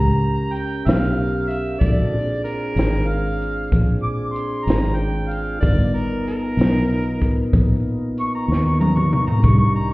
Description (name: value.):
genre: slow blues.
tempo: 63 BPM (dotted quarters).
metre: 12/8.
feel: straight.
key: unclear.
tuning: A4 = 440 Hz.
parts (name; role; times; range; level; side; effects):
clear harmonica; second line; 0.0-9.9 s; A#4 to D6; -26 LUFS; equal; plate reverb.
mellow tonewheel organ; sustained chords; 0.0-9.9 s; Db3 to Bb4; -25 LUFS; equal; slow rotary speaker, plate reverb.
fingered electric bass; bass; 0.0-9.9 s; G1 to D#2; -20 LUFS; equal; none.
compact cocktail drum kit; drums; 0.6-9.6 s; hi-hat, kick drum, snare drum, toms; -19 LUFS; equal; none.
room: light reverb.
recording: heard muffled through a wall, stone room reverb, EQ.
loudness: -17 LUFS.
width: side -21 dB against mid.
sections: 0.0-9.9 A section.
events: harmonica solo 0.0-9.9; drum fill 8.5-9.4.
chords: 0.0 Edim7 (rootless); 1.8 Bb7; 5.6 G7alt.